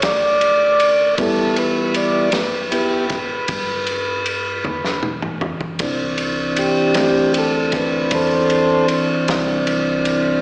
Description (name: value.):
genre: slow blues.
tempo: 52 BPM (dotted quarters).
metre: 12/8.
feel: straight.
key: E minor.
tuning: A4 = 440 Hz.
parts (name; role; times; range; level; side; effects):
mellow tonewheel organ; sustained chords; 0.0-10.4 s; E3 to D5; -16 LUFS; equal; slow rotary speaker.
upright bass; bass; 0.0-10.4 s; C2 to G2; -32 LUFS; equal; none.
vintage drum kit; drums; 0.0-10.2 s; kick drum, ride cymbal, snare drum, toms; -21 LUFS; equal; none.
room: light reverb.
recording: live gig heard through the venue's PA, recital hall reverb, small speaker sound.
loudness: -15 LUFS.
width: side -25 dB against mid.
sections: 0.0-10.4 A section.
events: tonewheel organ solo 0.0-10.4; drum fill 4.7-5.8.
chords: 0.0 N.C.; 1.2 Em; 5.8 C.